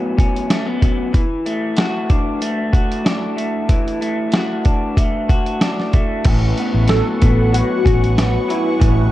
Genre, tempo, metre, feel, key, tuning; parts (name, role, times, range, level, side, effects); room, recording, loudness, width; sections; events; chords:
indie pop, bedroom pop; 94 BPM; 4/4; swing 55% on 16ths; A major; A4 = 441 Hz
electric guitar through a small old amp; accompaniment; 0.0-9.1 s; A2 to F#4; -20 LUFS; left 1 dB; wide subtle chorus, vibrato effect
dusty soul sampler-style drum kit; drums; 0.2-9.0 s; crash cymbal, hi-hat, kick drum, snare drum; -17 LUFS; equal
phased analog pad; sustained chords; 6.2-9.1 s; B4 to C#6; -28 LUFS; equal; phaser, chorus
vintage muted fingered electric bass; bass; 6.3-9.1 s; A1; -16 LUFS; equal
warbly lo-fi synth keys; melody; 6.9-9.1 s; E4 to A4; -20 LUFS; left 1 dB; analog chorus
light reverb; dark, warm production; -15 LUFS; side -15 dB against mid
0.0-6.3 A section; 6.3-9.1 B section
0.0 A69; 1.1 E9sus4; 6.3 A69